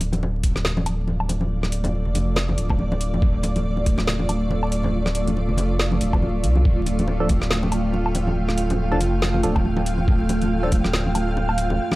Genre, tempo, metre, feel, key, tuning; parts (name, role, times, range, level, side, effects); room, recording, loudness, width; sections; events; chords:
deep dubstep; 140 BPM; 4/4; swing 58% on 16ths, half-time; D minor; A4 = 440 Hz
granular cloud pad; sustained chords; 0.7-12.0 s; A3 to F5; -26 LUFS; right 1 dB; built-in reverb
saturated sub bass; bass; 0.0-11.8 s; D1 to C2; -23 LUFS; equal
garage drum kit; drums; 0.0-12.0 s; hi-hat, snare drum, woodblock; -26 LUFS; equal; studio reverb
congas; percussion; 0.0-12.0 s; -28 LUFS; left 1 dB
electronic kick drum; drums; 0.4-10.8 s; -21 LUFS; equal; studio reverb
wind-like tuned noise texture; texture; 7.3-12.0 s; G5; -37 LUFS; left 3 dB; built-in reverb
percussive organ stab; stabs; 7.2-10.7 s; F3 to A4; -29 LUFS; equal; chorus, phaser, dub echo
digital ambience; dry, gritty hardware recording, vinyl crackle; -19 LUFS; side -19 dB against mid
0.0-12.0 A section
0.0 Dm